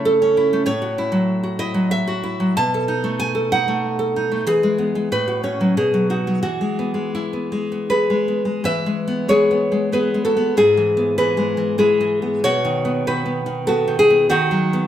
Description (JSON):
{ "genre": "romantic piece for solo classical guitar", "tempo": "78-99 BPM", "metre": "3/4", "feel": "rubato", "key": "E major", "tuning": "A4 = 443 Hz", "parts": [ { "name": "nylon-string guitar", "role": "solo", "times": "0.0-14.9 s", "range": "G#2 to A5", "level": "-17 LUFS", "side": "equal", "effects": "none" } ], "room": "moderate recital hall reverb, RT60 1.6 s", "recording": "recorded in a church or concert hall", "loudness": "-17 LUFS", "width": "side -11 dB against mid", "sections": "0.0-8.6 A section; 8.6-14.9 B section", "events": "none", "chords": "0.0 A/C#; 0.7 F#m7/A; 2.6 B7; 4.5 E; 5.1 F#m/A; 5.8 B; 6.4 E; 10.5 E/G#; 12.4 B; 14.3 B/D#", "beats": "0.07 | 0.68 1.29 1.92 | 2.58 3.21 3.83 | 4.47 5.10 5.75 | 6.43 7.14 7.89 | 8.63 9.28 9.90 | 10.54 11.16 11.78 | 12.44 13.06 13.68 | 14.29" }